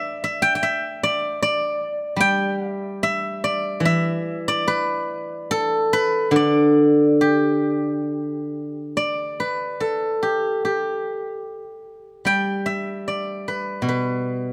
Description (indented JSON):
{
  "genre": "chinese traditional, Chinese solo plucked strings",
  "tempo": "71 BPM",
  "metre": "4/4",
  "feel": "uneven beats, rubato",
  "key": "G gong mode",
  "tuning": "A4 = 443 Hz",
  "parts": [
    { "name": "steel-string zither", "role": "solo", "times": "0.0-14.5 s", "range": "B2 to G5", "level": "-22 LUFS", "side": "equal", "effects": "none" }
  ],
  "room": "light reverb",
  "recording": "close, detailed microphones",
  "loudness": "-22 LUFS",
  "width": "mono",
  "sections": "0.0-9.0 A section; 9.0-14.5 B section",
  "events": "none",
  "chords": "none"
}